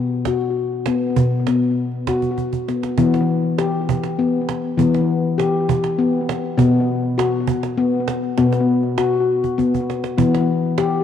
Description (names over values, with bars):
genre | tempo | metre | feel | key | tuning
world meditative, meditative tuned percussion | 100 BPM | 3/4 | straight | E minor | A4 = 441 Hz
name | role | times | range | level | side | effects
handpan | arpeggios | 0.0-11.0 s | B2 to G4 | -17 LUFS | left 3 dB | cassette tape, analog delay
cajon | percussion | 0.3-10.9 s | none | -24 LUFS | right 8 dB | none
room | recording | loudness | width
moderate lush hall reverb, RT60 2.5 s | home recording on cassette | -17 LUFS | side -9 dB against mid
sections
0.0-3.0 A section; 3.0-11.0 B section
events
drum fill 2.2-3.0, 9.4-10.2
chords
0.0 B5; 3.0 Em; 6.6 B5; 10.2 Em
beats
0.58 | 1.18 1.78 2.38 | 2.98 3.58 4.18 | 4.78 5.38 5.98 | 6.58 7.18 7.78 | 8.38 8.98 9.58 | 10.18 10.78